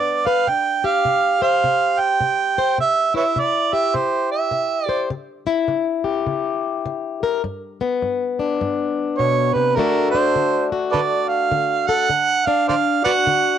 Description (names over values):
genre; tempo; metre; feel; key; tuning
acoustic country blues, solo or duo; 103 BPM; 4/4; swing 62% on 8ths; unclear; A4 = 440 Hz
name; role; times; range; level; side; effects
mellow harmonica; melody; 0.0-5.1, 9.2-13.6 s; A4 to G5; -18 LUFS; right 6 dB; cassette tape, plate reverb
fingerpicked plugged-in swing-style acoustic guitar; accompaniment; 0.0-13.6 s; G2 to C5; -21 LUFS; left 6 dB; cassette tape, plate reverb
room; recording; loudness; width
moderate booth ambience, RT60 0.1 s; home recording on cassette; -17 LUFS; side -9 dB against mid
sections
0.0-13.6 A section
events
none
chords
0.5 C; 5.1 C#dim; 7.4 G; 9.8 D